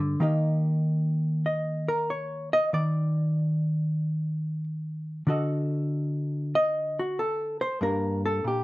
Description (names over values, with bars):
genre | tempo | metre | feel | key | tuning
solo jazz | 95 BPM | 4/4 | swing 68% on 8ths | unclear | A4 = 440 Hz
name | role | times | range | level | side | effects
hollow-body jazz guitar | solo | 0.0-8.6 s | G2 to Eb5 | -25 LUFS | equal | none
room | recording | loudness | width
light reverb | none | -25 LUFS | side -18 dB against mid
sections
0.0-8.6 A section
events
hollow-body jazz guitar solo 0.0-8.6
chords
0.2 Ebmaj7; 5.3 D; 7.8 Gm